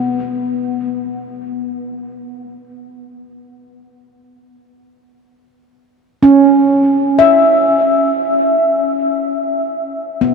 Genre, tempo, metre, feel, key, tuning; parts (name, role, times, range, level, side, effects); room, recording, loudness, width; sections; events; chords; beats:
ambient; free time; A4 = 441 Hz
handpan; solo; 0.0-10.3 s; B3 to E5; -12 LUFS; equal; diffuse ambient delay
wet huge ambient reverb, RT60 8.6 s; dark, warm production; -12 LUFS; side -5 dB against mid
0.0-3.4 A section; 3.4-10.3 B section
0.0 N.C.; 6.7 C#m
free time